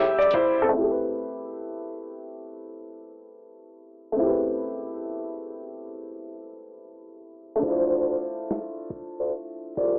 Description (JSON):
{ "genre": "lo-fi hip hop", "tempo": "70 BPM", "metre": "4/4", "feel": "swing 64% on 16ths", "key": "A minor", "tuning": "A4 = 440 Hz", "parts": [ { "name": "felt-muted upright piano", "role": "accompaniment", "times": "0.0-10.0 s", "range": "A3 to E5", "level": "-25 LUFS", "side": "equal", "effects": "none" }, { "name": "muted studio string section", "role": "sustained chords", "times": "0.0-0.7 s", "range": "C3 to E5", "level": "-39 LUFS", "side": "equal", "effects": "none" }, { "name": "mellow bassoon", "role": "bass", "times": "0.0-0.1, 7.6-10.0 s", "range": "C2 to D2", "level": "-26 LUFS", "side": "equal", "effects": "none" }, { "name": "dusty soul sampler-style drum kit", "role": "drums", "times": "0.2-0.6, 7.6-10.0 s", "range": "hi-hat, kick drum, shaker, snare drum", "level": "-32 LUFS", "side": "equal", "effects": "vintage 12-bit sampler grit" } ], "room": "moderate small room ambience, RT60 0.5 s", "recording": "cassette tape, low-pass filter, telephone sound", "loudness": "-24 LUFS", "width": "side -31 dB against mid", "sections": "0.8-10.0 A section", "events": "none", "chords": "0.0 Am9; 7.6 Dm9" }